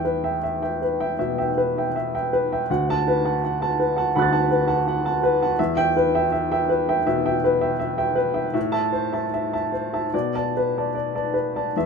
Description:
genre	neoclassical minimalist piano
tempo	73-84 BPM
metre	4/4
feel	rubato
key	E minor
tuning	A4 = 439 Hz
part	clear upright piano	solo	0.0-11.9 s	D2 to A6	-20 LUFS	equal	none
room	wet small room reverb, RT60 0.5 s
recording	minimal, uncompressed stereo recording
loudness	-20 LUFS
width	side -5 dB against mid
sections	0.0-11.8 A section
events	none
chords	0.0 Em; 2.7 Bm7/D; 5.6 Em; 8.6 Am; 10.1 Bm7

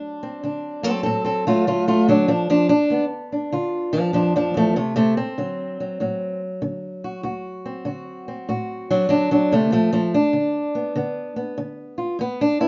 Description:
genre	acoustic country blues, solo or duo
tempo	97 BPM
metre	4/4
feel	swing 66% on 8ths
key	D mixolydian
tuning	A4 = 440 Hz
part	fingerpicked old ladder-braced acoustic guitar	solo	0.0-12.7 s	D2 to A4	-22 LUFS	equal	none
room	moderate studio reverb, RT60 0.6 s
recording	band playing live in one room, nothing above 7.6 kHz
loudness	-22 LUFS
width	mono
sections	0.0-12.7 A section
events	steel-string acoustic guitar solo 0.0-12.7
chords	0.0 D7; 2.3 G7; 4.8 D7; 9.7 G7

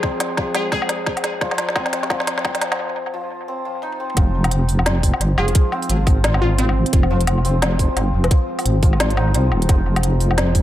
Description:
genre	half-time drum and bass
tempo	174 BPM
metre	4/4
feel	swing 59% on 16ths, half-time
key	F minor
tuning	A4 = 440 Hz
part	glassy wavetable pluck	melody	0.0-1.2, 5.4-6.9 s	C4 to Ab4	-26 LUFS	equal	chorus, tape echo
part	deep dark ambient pad	sustained chords	5.7-10.6 s	F4 to Eb5	-29 LUFS	left 3 dB	chorus, built-in reverb, sidechain pumping
part	santur	arpeggios	0.0-10.6 s	F3 to Eb4	-26 LUFS	left 1 dB	tape echo
part	electronic kick drum	drums	0.0-10.6 s	none	-17 LUFS	equal	none
part	organic electronic drum kit	drums	0.0-10.6 s	hi-hat, snare drum, toms, woodblock	-22 LUFS	left 1 dB	high-pass filter on snare, high-pass filter on perc, high-pass filter on hats, high-pass filter on toms, high-pass filter on room, analog delay
part	deep soft wobble bass	bass	4.2-10.6 s	Eb1 to C2	-18 LUFS	equal	chorus
room	moderate spring reverb, RT60 1.8 s, digital ambience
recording	echo-heavy mix, high-pass filter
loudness	-16 LUFS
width	side -13 dB against mid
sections	0.0-4.2 A section; 4.2-10.6 B section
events	build-up 0.0-4.2; drum fill 0.0-2.8, 3.8-4.2; filter sweep 0.0-4.2; break 2.8-4.2; drop 4.2-10.6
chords	0.0 Fm

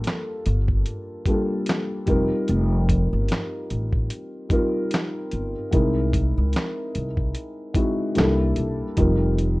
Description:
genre	lo-fi hip hop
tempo	74 BPM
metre	4/4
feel	swing 57% on 16ths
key	unclear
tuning	A4 = 440 Hz
part	felt-muted upright piano	accompaniment	0.0-9.6 s	G3 to Bb4	-25 LUFS	equal	cassette tape, low-pass filter, plate reverb
part	upright bass	bass	0.0-9.6 s	F1 to C#2	-23 LUFS	equal	none
part	lo-fi sampler-style drum kit	drums	0.0-9.6 s	handclaps, hi-hat, kick drum, snare drum	-24 LUFS	equal	vintage 12-bit sampler grit
room	light reverb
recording	rough home demo mix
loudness	-21 LUFS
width	side -21 dB against mid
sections	0.0-9.6 A section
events	none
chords	0.0 Gm7; 2.1 F9sus4; 5.7 C7alt; 8.2 C13; 9.0 F9sus4

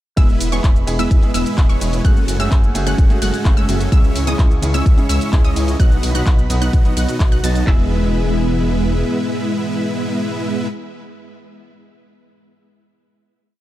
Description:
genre	EDM, festival progressive house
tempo	128 BPM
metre	4/4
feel	straight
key	E major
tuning	A4 = 440 Hz
part	warm baby grand piano	accompaniment	0.2-10.7 s	B2 to G#4	-26 LUFS	right 2 dB	sidechain pumping, tape echo
part	lush unison pad	sustained chords	0.2-10.7 s	E3 to C#6	-29 LUFS	left 2 dB	chorus, sidechain pumping
part	wide unison pluck	arpeggios	0.2-10.7 s	C#6 to A6	-28 LUFS	equal	sidechain pumping, tape echo
part	dense compressed supersaw	riff	0.2-10.7 s	G#3 to A5	-22 LUFS	equal	sidechain pumping, tape echo
part	wide detuned saw bass	bass	0.2-9.0 s	E1 to C#2	-20 LUFS	equal	chorus, sidechain pumping
part	house drum kit	drums	0.2-7.8 s	handclaps, kick drum	-13 LUFS	equal	none
part	house drum kit	drums	0.2-7.6 s	cabasa, handclaps, hi-hat, ride cymbal	-28 LUFS	equal	none
room	digital ambience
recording	none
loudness	-14 LUFS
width	side -14 dB against mid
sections	0.2-7.7 drop; 7.7-11.4 final chord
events	drop 0.2-7.7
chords	0.2 E; 2.0 F#madd9; 3.9 C#m; 5.8 B; 7.7 E

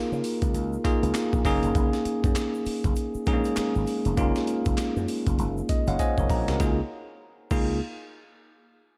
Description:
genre	R&B, new jack swing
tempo	99 BPM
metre	4/4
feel	swing 61% on 16ths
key	Db major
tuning	A4 = 441 Hz
part	bell-like tine electric piano	accompaniment	0.0-7.8 s	Ab3 to Bb5	-29 LUFS	equal	none
part	slap bass with an envelope filter	bass	0.1-7.8 s	F1 to Db3	-31 LUFS	equal	none
part	egg shaker	percussion	0.1-7.8 s	none	-53 LUFS	equal	none
part	breakbeat sampler-style drum kit	drums	0.2-7.7 s	crash cymbal, handclaps, hi-hat, kick drum, snare drum, tambourine	-30 LUFS	equal	none
room	light reverb, digital ambience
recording	dark, warm production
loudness	-26 LUFS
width	mono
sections	0.0-6.6 A section; 6.6-9.0 B section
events	tine electric piano fill 5.4-6.6; drum fill 6.0-6.6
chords	0.0 Db69; 1.4 Gb6; 6.6 Db69

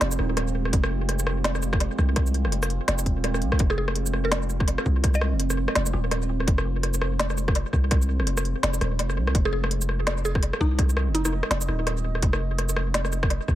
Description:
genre	half-time drum and bass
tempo	167 BPM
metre	4/4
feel	swing 59% on 16ths, half-time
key	F minor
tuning	A4 = 445 Hz
part	deep dark ambient pad	sustained chords	0.0-13.6 s	Ab3 to Eb5	-32 LUFS	right 3 dB	chorus, built-in reverb, sidechain pumping
part	long sustained 808-style bass	bass	0.0-13.6 s	Eb1 to C2	-25 LUFS	equal	none
part	organic electronic drum kit	drums	0.0-13.6 s	hi-hat, rim click, shaker, snare drum	-28 LUFS	equal	tape echo
part	electronic kick drum	drums	0.7-13.6 s	none	-23 LUFS	equal	overdrive
part	mallet-like synth pluck	melody	3.7-5.4, 9.5-11.3 s	Eb4 to Eb5	-32 LUFS	equal	chorus, analog delay
room	light reverb, digital ambience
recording	echo-heavy mix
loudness	-22 LUFS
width	side -14 dB against mid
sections	0.0-13.6 A section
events	drum fill 3.2-3.6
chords	0.0 Fm

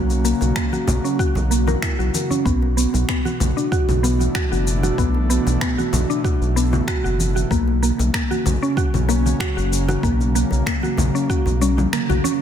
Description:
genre	organic downtempo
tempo	95 BPM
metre	4/4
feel	straight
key	B minor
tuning	A4 = 440 Hz
part	airy breathy pad	sustained chords	0.0-12.4 s	B2 to F#4	-26 LUFS	equal	chorus, sidechain pumping
part	mallet-like synth pluck	arpeggios	0.0-12.4 s	A#3 to A#4	-22 LUFS	equal	chorus, digital delay
part	round analog bass	bass	0.0-12.2 s	F#1 to B1	-20 LUFS	equal	tube saturation, sidechain pumping
part	afro-pop drum kit	drums	0.1-12.4 s	congas, finger snaps, shaker, toms	-26 LUFS	left 2 dB	overdrive, soft clipping on snare
part	bongos and congas	percussion	0.1-12.4 s	none	-30 LUFS	right 2 dB	none
part	electronic kick drum	drums	0.6-11.4 s	none	-23 LUFS	equal	none
room	light reverb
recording	dense, heavily limited modern master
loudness	-17 LUFS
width	side -9 dB against mid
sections	0.0-12.4 A section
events	filter sweep on synth pluck 0.0-12.4; drum fill 11.6-12.4; kick drops out 11.9-12.4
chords	0.0 F#; 2.5 Bm7; 7.5 F#

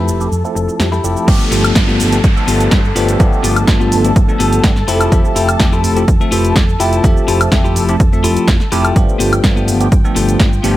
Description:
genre	filtered disco house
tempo	125 BPM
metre	4/4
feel	straight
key	G mixolydian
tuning	A4 = 440 Hz
part	bell-like tine electric piano	accompaniment	0.0-10.8 s	F3 to E5	-18 LUFS	equal	medium stereo tremolo, phaser, vintage 12-bit sampler grit, sidechain pumping, low-pass filter
part	muted studio string section	sustained chords	0.0-10.8 s	F3 to A5	-23 LUFS	left 1 dB	vintage 12-bit sampler grit, sidechain pumping, low-pass filter
part	clean electric guitar	riff	0.0-10.8 s	B3 to B4	-20 LUFS	left 4 dB	vintage 12-bit sampler grit, sidechain pumping, low-pass filter
part	hollow-body short-scale fingered electric bass	bass	0.0-10.8 s	F1 to G2	-17 LUFS	equal	sidechain pumping, low-pass filter
part	punchy analog drum machine	drums	0.1-10.7 s	crash cymbal, hi-hat, shaker, snare drum, woodblock	-19 LUFS	equal	overdrive, sidechain pumping on perc, sidechain pumping on hats, sidechain pumping on cymbals
part	electronic kick drum	drums	1.3-10.5 s	none	-12 LUFS	equal	overdrive
part	downlifter	sound effects	1.3-5.1 s	none	-24 LUFS	right 1 dB	none
room	digital ambience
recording	none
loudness	-10 LUFS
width	side -15 dB against mid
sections	0.0-1.3 A section; 1.3-10.8 B section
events	filter sweep 0.0-1.3; drop 1.3-10.8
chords	0.0 Fmaj9; 1.3 G9; 4.9 Fmaj9; 9.0 G9

